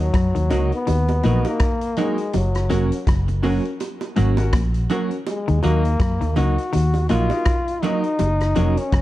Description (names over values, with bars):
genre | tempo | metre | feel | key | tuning
roots reggae | 82 BPM | 4/4 | swing 58% on 16ths | unclear | A4 = 437 Hz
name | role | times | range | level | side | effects
breathy trombone | melody | 0.0-9.0 s | F#3 to F#4 | -24 LUFS | left 2 dB | none
vintage muted fingered electric bass | bass | 0.0-9.0 s | E#1 to F#2 | -20 LUFS | equal | none
semi-hollow electric guitar | riff | 0.1-9.0 s | E#2 to F#3 | -26 LUFS | left 4 dB | none
vintage drum kit | drums | 0.1-9.0 s | hi-hat, kick drum, rim click | -23 LUFS | equal | vintage 12-bit sampler grit
clean electric guitar | accompaniment | 0.4-8.8 s | F#3 to F#4 | -27 LUFS | right 6 dB | none
clear grand piano | stabs | 0.5-8.8 s | C#4 to A#4 | -29 LUFS | left 2 dB | none
bongos | percussion | 0.5-8.8 s | none | -31 LUFS | right 6 dB | none
room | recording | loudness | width
little or no reverb | dark, warm production | -18 LUFS | side -15 dB against mid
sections
0.0-9.0 A section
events
none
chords
0.0 D#m; 2.3 F#; 5.3 D#m; 8.2 F#